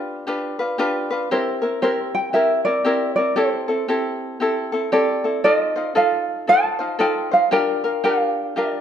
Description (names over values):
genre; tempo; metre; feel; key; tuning
Hawaiian; 116 BPM; 4/4; swing 62% on 8ths; F major; A4 = 440 Hz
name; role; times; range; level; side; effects
tenor ukulele; melody; 0.0-8.8 s; B4 to A5; -20 LUFS; right 1 dB; none
ukulele; accompaniment; 0.0-8.8 s; C4 to C5; -21 LUFS; left 1 dB; none
room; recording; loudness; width
moderate recital hall reverb, RT60 1.5 s; minimal, uncompressed stereo recording; -18 LUFS; side -9 dB against mid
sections
0.0-8.8 A section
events
none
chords
0.0 G7; 1.3 C7; 3.4 Am7; 5.4 F7; 7.5 Bb6